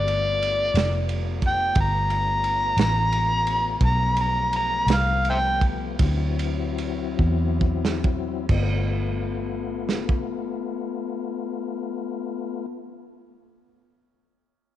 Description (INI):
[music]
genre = slow blues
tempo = 44-59 BPM (dotted quarters)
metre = 12/8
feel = straight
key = G mixolydian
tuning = A4 = 440 Hz
[part]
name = overdriven harmonica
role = melody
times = 0.0-5.6 s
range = C5 to Bb5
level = -23 LUFS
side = equal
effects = slapback echo
[part]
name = tonewheel organ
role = sustained chords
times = 0.0-12.7 s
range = F3 to F4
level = -31 LUFS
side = left 8 dB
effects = chorus vibrato, stopped rotary speaker
[part]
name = vintage muted fingered electric bass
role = bass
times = 0.0-12.6 s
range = F1 to E2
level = -25 LUFS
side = equal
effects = none
[part]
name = crunchy breakbeat drum kit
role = drums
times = 0.1-10.3 s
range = crash cymbal, kick drum, ride cymbal, snare drum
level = -27 LUFS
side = right 2 dB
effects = none
[sound]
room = light reverb, small room ambience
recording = 1960s-style stereo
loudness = -21 LUFS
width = side -12 dB against mid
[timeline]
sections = 0.0-8.5 A section; 8.5-14.0 B section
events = harmonica solo 0.0-8.5; slowing down 2.4-8.5; drum fill 7.2-8.5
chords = 0.0 G9; 6.0 D9; 8.5 G9